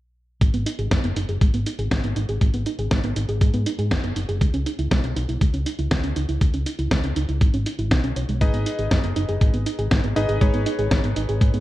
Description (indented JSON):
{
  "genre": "italo disco",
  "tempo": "120 BPM",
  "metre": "4/4",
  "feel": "straight",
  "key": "G# minor",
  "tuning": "A4 = 441 Hz",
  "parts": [
    { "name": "soft round pluck", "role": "arpeggios", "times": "0.4-11.6 s", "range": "G#3 to C#5", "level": "-28 LUFS", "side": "right 3 dB", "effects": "chorus, digital delay" },
    { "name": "hollow-body short-scale fingered electric bass", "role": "bass", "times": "0.4-11.6 s", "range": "F#1 to G#2", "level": "-24 LUFS", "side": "equal", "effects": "low-pass filter" },
    { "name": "dusty soul sampler-style drum kit", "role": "drums", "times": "0.4-11.6 s", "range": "hi-hat, snare drum", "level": "-28 LUFS", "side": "equal", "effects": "none" },
    { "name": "electronic kick drum", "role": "drums", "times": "0.4-11.5 s", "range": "none", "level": "-20 LUFS", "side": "equal", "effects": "none" },
    { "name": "clear electric grand piano", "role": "stabs", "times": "8.4-11.6 s", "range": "D#4 to D#5", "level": "-28 LUFS", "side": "left 2 dB", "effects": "digital delay" }
  ],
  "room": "light reverb, digital ambience",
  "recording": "dark, warm production, faint mains hum",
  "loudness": "-20 LUFS",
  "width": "side -16 dB against mid",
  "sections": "0.4-11.6 A section",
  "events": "filter sweep on synth arpeggio sound 0.4-11.6",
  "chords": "0.4 G#m; 4.4 C#madd9; 8.4 G#m",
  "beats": "| 0.41 0.91 1.41 1.91 | 2.41 2.91 3.41 3.91 | 4.41 4.91 5.41 5.91 | 6.41 6.91 7.41 7.91 | 8.41 8.91 9.41 9.91 | 10.41 10.91 11.41"
}